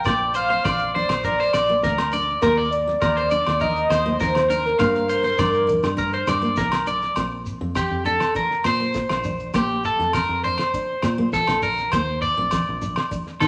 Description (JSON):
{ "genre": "highlife guitar band", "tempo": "101 BPM", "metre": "4/4", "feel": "straight", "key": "Bb major", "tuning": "A4 = 440 Hz", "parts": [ { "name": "warm velvety synth lead", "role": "melody", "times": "0.0-6.6 s", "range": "Bb4 to G5", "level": "-24 LUFS", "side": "equal", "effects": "chorus" }, { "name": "electric guitar at the edge of break-up", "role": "arpeggios", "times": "0.0-13.5 s", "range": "G4 to F5", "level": "-25 LUFS", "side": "equal", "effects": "none" }, { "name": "shekere", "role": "percussion", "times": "0.0-13.5 s", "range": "none", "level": "-39 LUFS", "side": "equal", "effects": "none" }, { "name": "picked steel-string acoustic guitar", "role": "accompaniment", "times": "0.1-13.3 s", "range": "Bb3 to D4", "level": "-32 LUFS", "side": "equal", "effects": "none" }, { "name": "fingered electric bass", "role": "bass", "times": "0.1-13.5 s", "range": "Bb1 to Eb3", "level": "-31 LUFS", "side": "equal", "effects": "none" }, { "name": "cloth-damped thuddy drum kit", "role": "drums", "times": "0.1-13.5 s", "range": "kick drum, snare drum", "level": "-33 LUFS", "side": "equal", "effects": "none" }, { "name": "agogo bells", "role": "percussion", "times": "0.1-13.5 s", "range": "none", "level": "-32 LUFS", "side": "equal", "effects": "none" }, { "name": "congas", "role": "percussion", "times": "0.1-13.3 s", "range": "none", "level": "-36 LUFS", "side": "equal", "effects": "none" } ], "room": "wet large studio reverb, RT60 1.3 s", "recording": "none", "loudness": "-21 LUFS", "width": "mono", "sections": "0.0-7.2 A section; 7.2-13.5 B section", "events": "clean electric guitar solo 7.2-13.5", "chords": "0.0 Bbadd9; 2.4 Eb5; 4.8 Gm; 7.2 Bbadd9; 11.9 Eb5" }